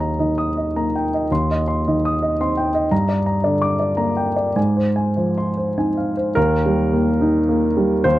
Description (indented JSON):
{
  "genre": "neoclassical minimalist piano",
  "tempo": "99-115 BPM",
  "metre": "3/4",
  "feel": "rubato",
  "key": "unclear",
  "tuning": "A4 = 441 Hz",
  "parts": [
    { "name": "warm grand piano", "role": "solo", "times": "0.0-8.2 s", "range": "Eb2 to Eb6", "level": "-17 LUFS", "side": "equal", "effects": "none" }
  ],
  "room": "studio reverb",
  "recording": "dry, close 1970s-style studio recording",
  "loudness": "-17 LUFS",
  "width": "side -15 dB against mid",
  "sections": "0.0-6.4 A section; 6.4-8.2 B section",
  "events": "none",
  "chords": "0.0 Eb; 1.3 Cm/Eb; 2.9 Gm; 4.6 Ab6; 6.4 Eb"
}